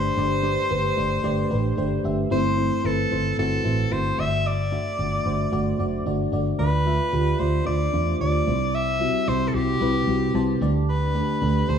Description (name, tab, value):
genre	1980s-style pop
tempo	112 BPM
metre	4/4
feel	straight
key	unclear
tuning	A4 = 439 Hz
part	bright soprano saxophone	melody	0.0-11.8 s	G4 to E5	-26 LUFS	left 1 dB	tape echo
part	mellow FM electric piano	accompaniment	0.0-11.8 s	G2 to A5	-25 LUFS	equal	chorus, phaser
part	vintage muted fingered electric bass	bass	0.0-11.8 s	F#1 to E2	-25 LUFS	right 1 dB	none
room	light reverb, small room ambience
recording	studio ambience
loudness	-20 LUFS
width	side -7 dB against mid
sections	0.0-6.6 A section; 6.6-11.8 B section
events	FM electric piano fill 10.1-10.9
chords	0.0 Gsus2; 2.3 Am/G; 4.2 D/G; 6.6 Dm; 8.5 C; 10.6 Dsus4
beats	| 0.17 0.70 1.24 1.77 | 2.31 2.85 3.38 3.92 | 4.45 4.99 5.52 6.06 | 6.60 7.13 7.67 8.20 | 8.74 9.27 9.81 10.35 | 10.88 11.42